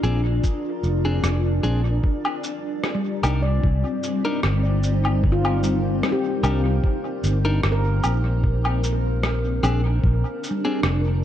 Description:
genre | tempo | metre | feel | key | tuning
ambient dub | 75 BPM | 4/4 | swing 54% on 16ths | C minor | A4 = 442 Hz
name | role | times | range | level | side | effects
granular cloud pad | sustained chords | 0.0-11.2 s | G3 to D5 | -26 LUFS | left 1 dB | built-in reverb
handpan | arpeggios | 0.0-11.2 s | G3 to D5 | -30 LUFS | equal | dub echo
clean electric guitar | stabs | 0.0-10.8 s | C4 to Bb4 | -31 LUFS | left 2 dB | dub echo
fingered electric bass | bass | 0.0-11.2 s | F1 to C2 | -21 LUFS | equal | none
electronic shaker, rim click and woodblock | drums | 0.0-11.0 s | none | -28 LUFS | equal | dub echo
wind-like tuned noise texture | texture | 0.0-2.1 s | Bb4 | -45 LUFS | right 2 dB | none
electronic kick drum | drums | 0.4-10.2 s | none | -21 LUFS | equal | none
room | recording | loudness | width
light reverb | dark, warm production | -19 LUFS | side -11 dB against mid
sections
0.0-2.0 A section; 2.0-11.2 B section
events
none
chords
0.0 Bb7; 2.0 Cm7; 8.4 Bb

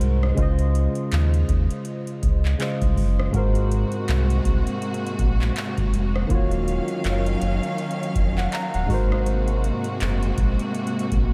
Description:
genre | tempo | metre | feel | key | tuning
contemporary R&B | 81 BPM | 4/4 | swing 58% on 16ths | unclear | A4 = 436 Hz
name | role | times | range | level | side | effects
soft electric-piano-like synth keys | accompaniment | 0.0-11.3 s | Ab2 to Bb5 | -30 LUFS | equal | chorus
sub bass with octave | bass | 0.0-11.3 s | Eb1 to Eb2 | -24 LUFS | equal | none
booming analog drum machine | drums | 0.0-11.3 s | handclaps, hi-hat, kick drum, rim click | -28 LUFS | equal | none
rich studio string section | sustained chords | 3.3-11.3 s | C3 to F5 | -30 LUFS | equal | none
room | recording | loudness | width
light reverb, digital ambience | none | -23 LUFS | mono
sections
0.0-11.3 A section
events
none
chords
0.4 Dbmaj9; 3.3 Ab9; 6.3 Ebm9; 8.9 Ab9

